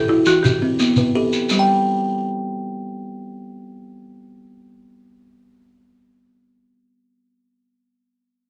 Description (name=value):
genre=southern african traditional, mbira-style interlocking cycle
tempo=free time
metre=none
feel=none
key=unclear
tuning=A4 = 438 Hz
part: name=buzzing marimba with hard mallets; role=melody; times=0.0-1.1 s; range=E4 to G4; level=-21 LUFS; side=equal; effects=none
part: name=buzzing kalimba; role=arpeggios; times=0.0-6.6 s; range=E3 to G5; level=-22 LUFS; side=equal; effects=none
part: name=shekere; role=percussion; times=0.3-1.7 s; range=none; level=-24 LUFS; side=equal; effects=none
room=wet club reverb, RT60 0.7 s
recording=none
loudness=-19 LUFS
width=mono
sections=0.0-1.5 A section; 1.5-5.8 B section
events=none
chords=0.0 Em; 1.5 N.C.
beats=free time